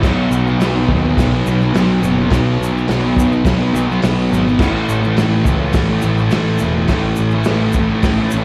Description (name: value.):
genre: garage rock duo or trio.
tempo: 105 BPM.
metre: 4/4.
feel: straight.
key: unclear.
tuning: A4 = 440 Hz.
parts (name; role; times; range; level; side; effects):
thick fuzz guitar; riff; 0.0-8.4 s; A2 to B3; -18 LUFS; equal; distortion, slapback echo.
fuzz picked electric bass; bass; 0.0-8.4 s; E1 to D#2; -20 LUFS; equal; overdrive.
vintage drum kit; drums; 0.0-8.2 s; crash cymbal, hi-hat, kick drum, snare drum; -22 LUFS; equal; none.
egg shaker; percussion; 0.0-8.4 s; none; -40 LUFS; equal; none.
room: light reverb.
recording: live gig heard through the venue's PA, club reverb.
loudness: -15 LUFS.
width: mono.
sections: 0.0-8.4 A section.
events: none.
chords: 0.0 B5; 4.6 A5.